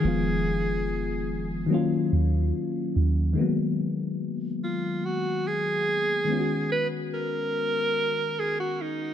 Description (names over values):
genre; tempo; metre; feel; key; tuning
contemporary R&B; 72 BPM; 4/4; straight; unclear; A4 = 439 Hz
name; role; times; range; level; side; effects
warm alto saxophone; melody; 0.0-9.1 s; Eb4 to Cb5; -27 LUFS; right 1 dB; ping-pong delay
mellow FM electric piano; accompaniment; 0.0-9.1 s; Eb3 to Gb4; -27 LUFS; left 3 dB; chorus
soft 808-style bass; bass; 0.0-3.4 s; F1 to Eb2; -26 LUFS; right 1 dB; none
room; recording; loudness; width
light reverb; none; -24 LUFS; side -9 dB against mid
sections
0.0-3.4 A section; 3.4-9.1 B section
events
none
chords
0.0 Fm7b5; 1.7 Ebm9; 3.4 Abm9; 6.3 Db9sus4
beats
| 0.04 0.87 1.70 2.54 | 3.37 4.20 5.04 5.87 | 6.70 7.54 8.37